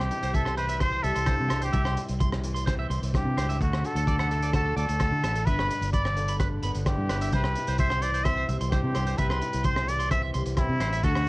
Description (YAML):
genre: highlife guitar band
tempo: 129 BPM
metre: 4/4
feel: straight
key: C major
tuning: A4 = 438 Hz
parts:
  - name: trumpet with straight mute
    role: melody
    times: 0.0-11.3 s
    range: E4 to E5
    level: -29 LUFS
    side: equal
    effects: cassette tape
  - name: nylon-string guitar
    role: accompaniment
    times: 0.0-11.3 s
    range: G2 to F#4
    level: -35 LUFS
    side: left 2 dB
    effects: cassette tape
  - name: fingered electric bass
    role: bass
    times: 0.0-11.3 s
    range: G1 to D3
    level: -28 LUFS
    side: equal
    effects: none
  - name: crunchy breakbeat drum kit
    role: drums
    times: 0.0-11.3 s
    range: hi-hat, kick drum, rim click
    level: -29 LUFS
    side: equal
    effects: cassette tape
  - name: electric guitar at the edge of break-up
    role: arpeggios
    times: 0.2-11.1 s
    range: A4 to C6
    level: -35 LUFS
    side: right 4 dB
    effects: spring reverb, cassette tape, analog delay
room: little or no reverb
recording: home recording on cassette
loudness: -24 LUFS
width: side -22 dB against mid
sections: 0.0-11.3 A section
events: none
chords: 0.0 C; 3.6 D; 5.5 G6; 7.3 C